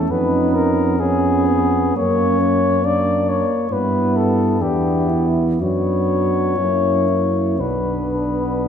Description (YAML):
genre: classical, hymn-like piece for brass band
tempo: 57-70 BPM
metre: 4/4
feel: rubato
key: B minor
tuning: A4 = 440 Hz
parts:
  - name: mellow flugelhorn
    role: melody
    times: 0.0-8.7 s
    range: G4 to D5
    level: -21 LUFS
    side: left 5 dB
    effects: none
  - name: dark French horn section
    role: second line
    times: 0.0-8.7 s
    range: C#4 to E4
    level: -24 LUFS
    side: right 8 dB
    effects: none
  - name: clear trombone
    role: accompaniment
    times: 0.0-8.7 s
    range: A3 to B3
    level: -26 LUFS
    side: right 2 dB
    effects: none
  - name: mellow tuba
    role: bass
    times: 0.0-8.7 s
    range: B1 to G2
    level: -21 LUFS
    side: equal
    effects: none
  - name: warm euphonium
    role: accompaniment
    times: 0.1-8.7 s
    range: A#3 to F#4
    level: -23 LUFS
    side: left 1 dB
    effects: none
room: wet concert hall reverb, RT60 2.0 s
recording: heard from further back in the room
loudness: -16 LUFS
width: side -8 dB against mid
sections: 0.0-8.7 A section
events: none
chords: 0.1 C#7/E#; 2.0 F#; 3.7 Em/G; 5.6 Bm/F#; 6.6 F#7; 7.6 Bm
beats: | 0.12 1.00 1.97 2.85 | 3.71 4.61 5.62 6.58 | 7.59 8.62